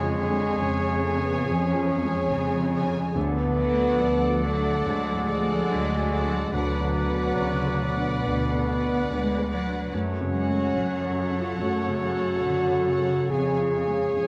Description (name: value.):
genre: cinematic.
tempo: 71 BPM.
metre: 4/4.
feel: rubato.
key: F# harmonic minor.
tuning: A4 = 437 Hz.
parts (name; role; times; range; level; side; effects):
muted symphonic violin section; melody; 0.0-14.3 s; F#5 to G#5; -40 LUFS; equal; none.
clear clarinet; second line; 0.0-14.3 s; G#4 to B4; -40 LUFS; equal; none.
clear oboe; second line; 0.0-14.3 s; C#5 to D5; -37 LUFS; equal; none.
mellow large flute ensemble; second line; 0.0-14.3 s; E#5 to G#5; -43 LUFS; equal; none.
muted symphonic violin section; second line; 0.0-14.3 s; C#5 to D5; -40 LUFS; equal; none.
felt-muted upright piano; accompaniment; 0.0-14.3 s; D2 to D5; -36 LUFS; equal; none.
muted symphonic viola section; accompaniment; 0.0-14.3 s; F#4 to B4; -40 LUFS; equal; none.
mellow French horn section; sustained chords; 0.0-14.3 s; F#3 to G#4; -29 LUFS; equal; none.
concert harp; arpeggios; 0.0-14.3 s; E#2 to C#6; -41 LUFS; equal; none.
muted chamber cello section; bass; 0.0-14.3 s; B2 to A3; -33 LUFS; equal; none.
muted symphonic double bass section; bass; 0.0-14.3 s; D2 to F#2; -32 LUFS; equal; none.
room: moderate scoring stage reverb, RT60 1.6 s.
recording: none.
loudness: -25 LUFS.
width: mono.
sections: 0.0-14.3 A section.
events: none.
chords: 0.0 C#/E#; 3.2 D; 6.5 Bm/D; 9.9 F#m; 13.3 C#/E#.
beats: 0.60 1.46 2.31 | 3.16 4.01 4.85 5.69 | 6.53 7.38 8.26 9.10 | 9.93 10.77 11.60 12.45 | 13.31 14.16.